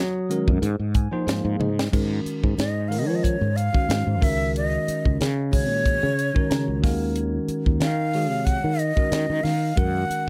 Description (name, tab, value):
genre	electric jazz fusion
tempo	92 BPM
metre	4/4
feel	swing 54% on 16ths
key	Ab mixolydian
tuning	A4 = 441 Hz
part	fretless electric bass	bass	0.0-10.1 s	Db2 to Gb3	-27 LUFS	equal	none
part	bell-like tine electric piano	accompaniment	0.3-10.3 s	Eb3 to Bb5	-30 LUFS	equal	phaser
part	tight funk drum kit	drums	0.3-10.3 s	crash cymbal, hi-hat, kick drum, snare drum, toms	-26 LUFS	equal	none
part	breathy jazz flute	melody	2.6-10.3 s	Db5 to Gb5	-29 LUFS	equal	plate reverb
room	moderate club ambience, RT60 0.5 s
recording	none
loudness	-23 LUFS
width	mono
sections	0.0-1.9 A section; 1.9-10.3 B section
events	tine electric piano fill 0.6-1.9, 6.2-7.2; drum fill 1.6-1.9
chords	0.0 Gb69; 0.6 Ab69; 1.9 Ab9sus4; 4.2 Db5; 6.8 Ebm11; 9.8 Gb69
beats	0.63 1.28 | 1.93 2.59 3.24 3.89 | 4.55 5.20 5.85 6.51 | 7.16 7.81 8.47 9.12 | 9.77